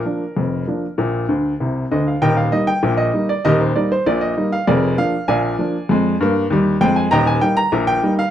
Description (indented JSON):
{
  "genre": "ragtime piano",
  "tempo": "98 BPM",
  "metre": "2/4",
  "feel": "straight",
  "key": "Eb major",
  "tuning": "A4 = 440 Hz",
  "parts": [
    { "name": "clear upright piano", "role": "solo", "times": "0.0-8.3 s", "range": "Eb1 to Bb5", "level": "-15 LUFS", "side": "equal", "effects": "none" }
  ],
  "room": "small room ambience",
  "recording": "dry, close 1970s-style studio recording",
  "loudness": "-15 LUFS",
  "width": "side -10 dB against mid",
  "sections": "0.0-2.2 A section; 2.2-8.3 B section",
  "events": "upright piano fill 1.3-2.2",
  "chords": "0.0 Bb; 2.2 Eb; 4.7 Bb7/F; 7.1 Eb"
}